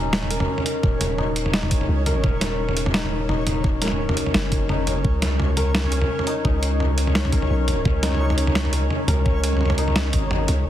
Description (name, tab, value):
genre	half-time drum and bass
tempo	171 BPM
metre	4/4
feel	swing 55% on 16ths, half-time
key	unclear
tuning	A4 = 436 Hz
part	santur	arpeggios	0.0-10.7 s	Db4 to Bb4	-27 LUFS	left 3 dB	low-pass filter, ping-pong delay
part	long sustained 808-style bass	bass	0.0-10.7 s	Eb1 to Db2	-23 LUFS	equal	tube saturation
part	backwards swelling texture	texture	0.1-10.7 s	Db4 to Gb5	-30 LUFS	equal	built-in reverb
part	boom bap sampler-style drum kit	drums	0.1-10.6 s	hi-hat, snare drum, toms	-24 LUFS	right 1 dB	low-pass filter on toms, low-pass filter on hats, low-pass filter on snare, low-pass filter on room
part	electronic kick drum	drums	0.8-10.2 s	none	-22 LUFS	equal	none
room	digital ambience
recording	heavily compressed radio sound, multiband compression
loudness	-19 LUFS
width	side -12 dB against mid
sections	0.0-10.7 A section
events	kick drops out 10.3-10.7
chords	0.0 Ebm; 5.0 Db5